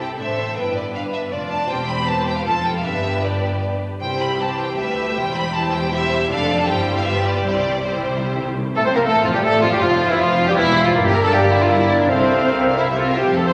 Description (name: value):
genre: quick classical-period movement for symphony orchestra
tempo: 157 BPM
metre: 3/4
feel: rubato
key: C major, F major from 8.7 s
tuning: A4 = 440 Hz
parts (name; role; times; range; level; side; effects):
- rich studio violin section; melody; 0.0-13.3 s; E4 to B5; -27 LUFS; equal; none
- warm studio violin section; second line; 0.0-13.5 s; C4 to D5; -25 LUFS; equal; none
- rich studio viola section; accompaniment; 0.0-13.3 s; D3 to Bb4; -30 LUFS; equal; none
- rich studio cello section; bass; 0.0-13.5 s; C2 to C3; -29 LUFS; equal; none
- rich studio double bass section; bass; 0.0-13.5 s; E1 to D2; -29 LUFS; equal; none
- timpani; percussion; 4.0-4.6, 7.5-8.6 s; C3; -34 LUFS; equal; none
- clear oboe; second line; 8.8-13.5 s; E4 to F5; -28 LUFS; equal; none
- mellow hollow flute section; second line; 8.8-13.5 s; C5 to C6; -30 LUFS; equal; none
- mellow bassoon; accompaniment; 8.8-13.5 s; E3 to C4; -24 LUFS; equal; none
- mellow French horn section; sustained chords; 8.8-13.5 s; C4 to C5; -27 LUFS; equal; none
- clear trumpet; stabs; 8.8-13.5 s; C4 to C5; -28 LUFS; equal; none
- mellow clarinet; second line; 9.0-13.5 s; C4 to F5; -28 LUFS; equal; none
room: wet concert hall reverb, RT60 2.2 s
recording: none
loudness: -19 LUFS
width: mono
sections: 0.0-8.7 A section; 8.7-13.5 B section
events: timpani fill 7.5-8.7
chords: 0.0 C; 0.6 G; 1.7 C/E; 2.5 F; 2.9 G; 4.0 C; 5.2 C/E; 6.3 Dm/F; 6.7 C/G; 7.1 G7; 7.5 C; 8.7 F; 9.8 F5; 10.9 Gm; 12.1 F/C; 12.9 C